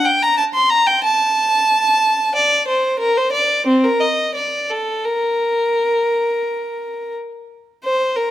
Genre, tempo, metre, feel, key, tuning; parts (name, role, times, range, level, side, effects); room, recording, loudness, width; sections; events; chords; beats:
classical, baroque-style suite movement for unaccompanied violin; 85-93 BPM; 4/4; rubato; A4 = 439 Hz
rich violin; solo; 0.0-8.3 s; C4 to C6; -15 LUFS; equal
moderate scoring stage reverb, RT60 1.6 s; close, detailed microphones; -15 LUFS; side -13 dB against mid
0.0-7.8 A section
0.38 1.03 1.69 | 2.35 3.00 3.67 4.35 | 5.05 5.75 6.45 7.15 | 7.84